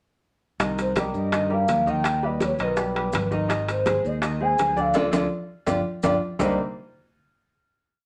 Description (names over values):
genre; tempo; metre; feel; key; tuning
latin, salsa; 166 BPM; 4/4; straight; C minor; A4 = 435 Hz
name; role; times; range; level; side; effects
bright concert grand piano; accompaniment; 0.6-6.6 s; C3 to Eb5; -30 LUFS; equal; none
modern bright fingered electric bass; bass; 0.6-6.6 s; G1 to G2; -31 LUFS; equal; none
bongos; percussion; 0.6-6.5 s; none; -33 LUFS; equal; none
congas; percussion; 0.6-6.5 s; none; -35 LUFS; equal; none
maracas; percussion; 0.6-6.5 s; none; -46 LUFS; equal; none
timbales; percussion; 0.6-6.5 s; none; -32 LUFS; equal; none
pure breathy sine lead; melody; 0.8-6.6 s; B4 to Ab5; -28 LUFS; equal; chorus
room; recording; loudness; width
wet studio reverb, RT60 0.6 s; none; -24 LUFS; mono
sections
0.6-6.4 verse; 6.4-7.8 final chord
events
band accent 5.0-6.4; drum fill 5.3-6.4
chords
0.6 Cm7; 2.1 Ebaug; 3.5 Ab; 5.0 Dm; 5.7 G5; 6.4 Cm9